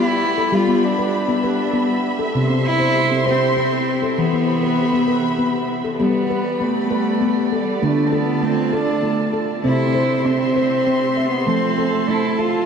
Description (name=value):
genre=world meditative, meditative tuned percussion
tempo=66 BPM (dotted quarters)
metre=6/8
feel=straight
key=unclear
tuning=A4 = 440 Hz
part: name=rich cello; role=melody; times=0.0-12.7 s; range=G3 to F4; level=-22 LUFS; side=right 2 dB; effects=ping-pong delay
part: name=dark chamber string section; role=sustained chords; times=0.0-12.7 s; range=F4 to C6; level=-25 LUFS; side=equal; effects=none
part: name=handpan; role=arpeggios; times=0.0-12.7 s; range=C3 to E5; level=-18 LUFS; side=left 1 dB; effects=ping-pong delay
room=wet huge ambient reverb, RT60 8.6 s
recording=in a vast, echoing space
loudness=-16 LUFS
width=side -6 dB against mid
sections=0.0-6.0 A section; 6.0-12.7 B section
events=none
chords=0.0 G; 2.4 C; 4.2 Em; 6.0 G; 7.8 Dm; 9.6 C; 11.5 F